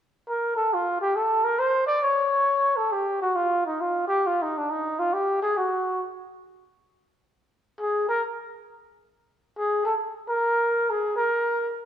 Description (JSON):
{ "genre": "jazz", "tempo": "136 BPM", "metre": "4/4", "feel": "swing 65% on 8ths", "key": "unclear", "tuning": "A4 = 442 Hz", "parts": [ { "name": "breathy trumpet", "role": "solo", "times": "0.3-11.7 s", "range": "D4 to D5", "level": "-22 LUFS", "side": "equal", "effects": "none" } ], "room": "wet recital hall reverb, RT60 1.5 s", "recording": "recorded in a church or concert hall", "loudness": "-22 LUFS", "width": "side -10 dB against mid", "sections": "0.0-11.9 A section", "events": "none", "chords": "none", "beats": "0.26 0.70 | 1.14 1.59 2.03 2.47 | 2.91 3.35 3.79 4.24 | 4.68 5.12 5.56 6.00 | 6.44 6.88 7.33 7.77 | 8.21 8.65 9.09 9.53 | 9.97 10.42 10.86 11.30" }